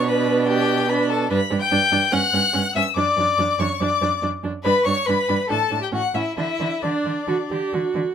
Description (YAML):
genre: quick classical-period movement for string quartet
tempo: 142 BPM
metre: 4/4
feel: uneven beats, rubato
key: D major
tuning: A4 = 440 Hz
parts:
  - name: rich violin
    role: melody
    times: 0.0-8.0 s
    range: D5 to G6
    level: -23 LUFS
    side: left 7 dB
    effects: none
  - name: rich violin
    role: second line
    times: 0.0-8.0 s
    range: D4 to G5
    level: -24 LUFS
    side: left 2 dB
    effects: none
  - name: clear viola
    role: accompaniment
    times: 0.0-8.1 s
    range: C#4 to G4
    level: -26 LUFS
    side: right 4 dB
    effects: none
  - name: rich cello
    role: bass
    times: 0.0-8.0 s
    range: F#2 to D3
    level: -25 LUFS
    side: right 5 dB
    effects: none
room: light reverb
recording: none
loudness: -18 LUFS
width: side -8 dB against mid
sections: 0.0-8.1 A section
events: none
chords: 0.0 Bm; 1.3 G; 2.1 Em69/G; 3.0 D/F#; 4.6 G; 5.5 D5/A; 5.9 A; 6.4 D